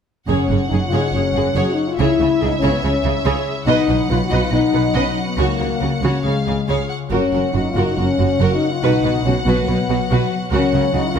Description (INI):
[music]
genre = cinematic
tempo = 141 BPM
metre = 4/4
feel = straight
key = F# major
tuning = A4 = 440 Hz
[part]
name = warm symphonic violin section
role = melody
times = 0.3-11.2 s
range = E5 to F#5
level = -28 LUFS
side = left 2 dB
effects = none
[part]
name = dark chamber violin section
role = second line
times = 0.3-11.2 s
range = F#4 to D#5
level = -27 LUFS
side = equal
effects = none
[part]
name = warm symphonic viola section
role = accompaniment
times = 0.3-11.2 s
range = F#4 to B4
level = -25 LUFS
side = right 2 dB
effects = none
[part]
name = mellow French horn section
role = sustained chords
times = 0.3-11.2 s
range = G#3 to F#4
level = -20 LUFS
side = left 4 dB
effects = none
[part]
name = concert harp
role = arpeggios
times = 0.3-11.2 s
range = F#2 to F#4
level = -26 LUFS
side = left 7 dB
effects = none
[part]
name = rich symphonic cello section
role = bass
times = 0.3-11.2 s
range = F#2 to C#3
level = -23 LUFS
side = right 4 dB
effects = none
[part]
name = warm symphonic double bass section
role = bass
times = 0.3-11.2 s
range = F#1 to C#2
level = -22 LUFS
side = right 4 dB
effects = none
[part]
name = timpani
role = percussion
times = 0.3-0.9 s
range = F#2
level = -28 LUFS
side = equal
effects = none
[sound]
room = moderate recital hall reverb, RT60 1.6 s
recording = none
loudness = -15 LUFS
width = side -7 dB against mid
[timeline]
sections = 0.3-11.2 A section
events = none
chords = 0.3 F#sus2; 2.0 C#m; 3.7 B; 5.4 F#/C#; 6.2 C#; 7.1 F#; 8.8 B; 10.5 F#/C#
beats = | 0.28 0.71 1.14 1.56 | 1.99 2.42 2.83 3.26 | 3.68 4.10 4.52 4.95 | 5.38 5.81 6.24 6.68 | 7.11 7.54 7.97 8.40 | 8.82 9.25 9.68 10.10 | 10.52 10.94